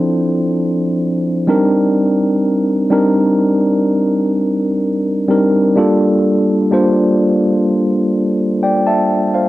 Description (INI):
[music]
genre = R&B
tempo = 63 BPM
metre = 4/4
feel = straight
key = unclear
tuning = A4 = 440 Hz
[part]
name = mellow tine electric piano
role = solo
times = 0.0-9.5 s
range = F3 to A5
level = -12 LUFS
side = equal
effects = medium stereo tremolo, cassette tape
[sound]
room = light reverb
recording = home recording on cassette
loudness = -12 LUFS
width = side -16 dB against mid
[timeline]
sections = 0.0-9.5 A section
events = none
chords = 0.0 Dm9; 1.5 Cm9; 5.8 Gm9